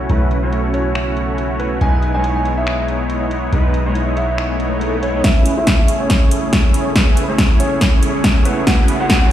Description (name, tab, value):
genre	future bass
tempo	140 BPM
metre	4/4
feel	swing 55% on 16ths, half-time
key	A lydian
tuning	A4 = 441 Hz
part	airy breathy pad	sustained chords	0.0-9.3 s	C#3 to G#4	-27 LUFS	right 2 dB	chorus, sidechain pumping
part	supersaw chords	riff	0.0-9.3 s	G#3 to C#5	-20 LUFS	equal	sidechain pumping, low-pass filter
part	warm 808-style bass	bass	0.0-5.2 s	B1	-19 LUFS	equal	sidechain pumping
part	big-room dance drum kit	drums	0.1-9.2 s	finger snaps, hi-hat, snare drum	-18 LUFS	equal	low-pass filter on hats, low-pass filter on snare
part	dark grand piano	melody	0.7-9.3 s	B3 to G#5	-24 LUFS	equal	sidechain pumping, low-pass filter, ping-pong delay
part	swell and riser	sound effects	4.5-9.3 s	none	-28 LUFS	left 2 dB	none
part	electronic kick drum	drums	5.2-9.2 s	none	-14 LUFS	equal	none
room	light reverb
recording	played on a big sound system in a bare room, stone room reverb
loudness	-14 LUFS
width	side -11 dB against mid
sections	0.0-5.2 A section; 5.2-9.3 B section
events	filter sweep on analog synth pad 0.0-5.2, 5.2-9.3; swell 4.5-5.2; build-up 5.2-9.3; drum fill 5.2-9.3; filter sweep on supersaw synth 5.2-9.3; filter sweep on grand piano 5.2-9.3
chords	0.0 B9sus4; 1.8 Emaj7/B; 5.2 Amaj9